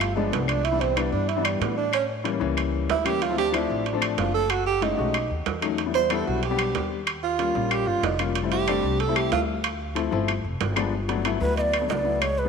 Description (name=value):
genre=Afro-Cuban jazz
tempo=187 BPM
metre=4/4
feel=straight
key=C major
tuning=A4 = 439 Hz
part: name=breathy tenor saxophone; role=second line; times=0.0-12.5 s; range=G3 to C5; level=-26 LUFS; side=right 8 dB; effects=none
part: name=upright bass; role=bass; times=0.0-12.5 s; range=F1 to A2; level=-30 LUFS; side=equal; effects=none
part: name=claves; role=percussion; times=0.0-12.4 s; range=none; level=-34 LUFS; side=left 12 dB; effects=none
part: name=timbales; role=percussion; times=0.0-12.4 s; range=none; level=-31 LUFS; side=right 11 dB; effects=none
part: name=warm concert grand piano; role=accompaniment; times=0.2-12.5 s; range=E3 to G4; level=-28 LUFS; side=left 10 dB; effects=none
part: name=breathy mellow shakuhachi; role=melody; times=11.4-12.5 s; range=B4 to Eb5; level=-24 LUFS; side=right 1 dB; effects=none
room=moderate plate reverb, RT60 2.8 s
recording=1960s-style stereo with parts hard left and right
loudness=-22 LUFS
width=side -6 dB against mid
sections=0.6-10.9 A section; 10.9-12.5 B section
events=tenor saxophone solo 0.0-10.9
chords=0.0 G7b9; 0.6 Cmaj7; 1.9 A7b9; 3.2 Dm9; 4.5 F#m9; 5.1 B7; 5.8 Em7; 7.1 Eb9; 8.4 Fmaj7; 9.6 Dm7; 10.3 G7b9; 10.9 Gmaj9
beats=0.01 0.33 | 0.65 0.97 1.29 1.61 | 1.93 2.25 2.57 2.89 | 3.21 3.54 3.86 4.18 | 4.50 4.82 5.14 5.46 | 5.78 6.11 6.43 6.75 | 7.07 7.39 7.71 8.03 | 8.36 8.68 9.00 9.32 | 9.64 9.96 10.28 10.61 | 10.93 11.25 11.57 11.89 | 12.22